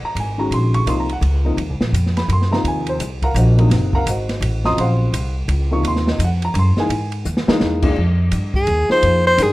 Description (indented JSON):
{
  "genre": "modal jazz",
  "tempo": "169 BPM",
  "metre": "3/4",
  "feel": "swing 63% on 8ths",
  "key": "Eb dorian",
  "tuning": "A4 = 440 Hz",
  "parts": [
    { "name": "warm upright piano", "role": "accompaniment", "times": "0.0-9.5 s", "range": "A#2 to Eb6", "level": "-21 LUFS", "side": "left 1 dB", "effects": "none" },
    { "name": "upright bass", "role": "bass", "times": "0.0-9.5 s", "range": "Gb1 to G#2", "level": "-18 LUFS", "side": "equal", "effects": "none" },
    { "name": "open jazz drum kit", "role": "drums", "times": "0.2-9.5 s", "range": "crash cymbal, hi-hat, kick drum, ride cymbal, snare drum", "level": "-24 LUFS", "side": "equal", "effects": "none" },
    { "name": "clear soprano saxophone", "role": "melody", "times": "8.6-9.5 s", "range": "Ab4 to C5", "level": "-14 LUFS", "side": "equal", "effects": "none" }
  ],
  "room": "studio reverb",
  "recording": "rough home demo mix",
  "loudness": "-15 LUFS",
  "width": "side -18 dB against mid",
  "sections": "0.0-8.0 A section; 8.0-9.5 A section",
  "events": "drum fill 7.3-7.6; soprano saxophone solo 8.0-9.5",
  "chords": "0.0 Ebm69; 6.9 Emaj7#11; 8.0 Fm11"
}